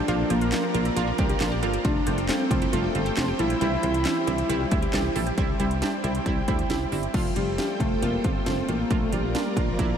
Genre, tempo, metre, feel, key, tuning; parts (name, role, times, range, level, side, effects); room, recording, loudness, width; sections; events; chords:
synth-pop; 136 BPM; 4/4; straight; F major; A4 = 444 Hz
octave-doubled lead; melody; 0.0-10.0 s; F3 to E4; -29 LUFS; left 1 dB; chorus, ping-pong delay
string machine, violas; sustained chords; 0.0-10.0 s; F3 to Bb5; -32 LUFS; equal; ensemble chorus
resonant blip pluck; arpeggios; 0.0-5.3 s; C4 to A4; -36 LUFS; equal
analog pluck; accompaniment; 0.1-9.9 s; E3 to G4; -29 LUFS; right 2 dB; chorus
solid FM bass; bass; 0.1-9.9 s; F1 to D2; -28 LUFS; equal
house drum kit; drums; 0.1-9.9 s; crash cymbal, handclaps, hi-hat, kick drum, snare drum; -28 LUFS; equal; overdrive
moderate huge ambient reverb, RT60 7.7 s; dreamy mix soaked in reverb; -22 LUFS; side -8 dB against mid
0.0-5.4 A section; 5.4-7.1 B section; 7.1-10.0 C section
0.1 Bb; 1.8 Fadd9; 3.6 C; 7.1 Fadd9; 8.9 Bb